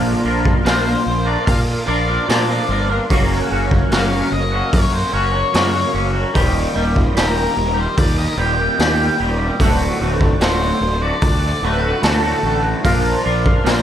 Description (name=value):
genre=psychedelic rock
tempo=74 BPM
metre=4/4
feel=straight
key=unclear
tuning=A4 = 441 Hz
part: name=bright tonewheel organ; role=sustained chords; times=0.0-13.8 s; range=F#4 to Eb6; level=-30 LUFS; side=right 4 dB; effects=none
part: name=twangy electric guitar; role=riff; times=0.0-13.8 s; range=D2 to Bb4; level=-20 LUFS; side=equal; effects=phaser, double-tracked left and right
part: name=fuzz fingered electric bass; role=bass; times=0.0-13.8 s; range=D1 to Bb2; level=-20 LUFS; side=equal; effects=overdrive
part: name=raw garage drum kit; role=drums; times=0.5-13.8 s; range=hi-hat, kick drum, snare drum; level=-20 LUFS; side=equal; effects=none
part: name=octave-fuzz lead guitar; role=melody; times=0.7-13.8 s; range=A4 to G5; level=-23 LUFS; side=left 1 dB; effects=distortion, analog delay
room=studio reverb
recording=none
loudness=-14 LUFS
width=side -10 dB against mid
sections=0.0-13.8 A section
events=none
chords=0.0 Bbadd9; 3.1 F#; 6.3 Eb; 9.6 D; 12.8 Bbadd9